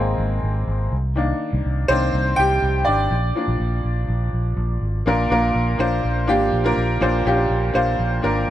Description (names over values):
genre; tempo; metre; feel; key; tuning
piano-driven pop; 123 BPM; 4/4; straight; unclear; A4 = 440 Hz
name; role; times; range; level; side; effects
bright upright piano; accompaniment; 0.0-8.5 s; Bb2 to Bb5; -20 LUFS; equal; none
fingered electric bass; bass; 0.0-8.4 s; Ab1 to C2; -22 LUFS; equal; none
room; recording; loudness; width
light reverb; dark, warm production; -18 LUFS; side -12 dB against mid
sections
0.0-5.1 A section; 5.1-8.5 B section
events
upright piano solo 0.0-5.1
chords
0.0 Abadd9; 0.9 Cm7; 3.1 Bb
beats
0.18 0.67 | 1.16 1.65 2.13 2.62 | 3.11 3.60 4.09 4.57 | 5.06 5.55 6.04 6.53 | 7.02 7.50 7.99 8.48